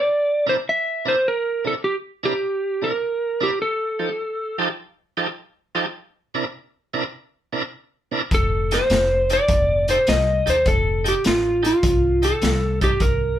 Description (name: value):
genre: electric blues shuffle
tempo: 102 BPM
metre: 4/4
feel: swing 68% on 8ths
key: unclear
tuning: A4 = 439 Hz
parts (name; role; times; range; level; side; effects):
- electric slide guitar; melody; 0.0-4.6, 8.3-13.4 s; F4 to E5; -20 LUFS; equal; none
- bright tonewheel organ; accompaniment; 0.5-12.9 s; C3 to Bb4; -24 LUFS; right 3 dB; slow rotary speaker, overdrive
- upright bass; bass; 8.3-13.4 s; F1 to Eb2; -23 LUFS; equal; none
- raw garage drum kit; drums; 8.3-13.2 s; hi-hat, kick drum, snare drum; -23 LUFS; equal; none
room: moderate studio reverb, RT60 0.5 s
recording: band playing live in one room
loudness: -19 LUFS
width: side -11 dB against mid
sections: 0.0-13.4 A section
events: none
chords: 0.0 C9; 3.6 F9; 6.0 C9; 8.3 F9